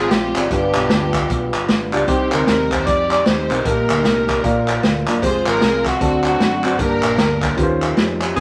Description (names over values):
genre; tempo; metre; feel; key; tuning
uptempo gospel; 153 BPM; 4/4; swing 62% on 8ths; Eb major; A4 = 440 Hz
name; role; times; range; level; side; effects
breathy alto saxophone; melody; 0.0-8.4 s; Gb4 to D5; -24 LUFS; equal; none
warm studio string section; melody; 0.0-8.4 s; A3 to D5; -28 LUFS; equal; none
mellow French horn section; sustained chords; 0.0-8.4 s; D3 to D5; -31 LUFS; equal; none
percussive tonewheel organ; sustained chords; 0.0-8.4 s; F3 to Bb5; -30 LUFS; equal; none
fingered electric bass; bass; 0.0-8.4 s; F1 to F#2; -28 LUFS; equal; none
swinging big-band drum kit; drums; 0.1-8.4 s; hi-hat, kick drum, snare drum; -23 LUFS; equal; none
warm baby grand piano; accompaniment; 0.4-8.4 s; G2 to D5; -24 LUFS; equal; none
group handclap; percussion; 0.4-8.3 s; none; -26 LUFS; equal; none
room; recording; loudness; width
light reverb; vinyl crackle; -17 LUFS; mono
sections
0.0-8.4 A section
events
tonewheel organ fill 4.4-5.2, 7.6-8.4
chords
0.0 Fm; 0.5 G7; 2.1 Cm; 3.6 Eb/Bb; 4.4 Bb; 5.2 Fm; 6.0 D7; 6.8 Gm; 7.6 Eb13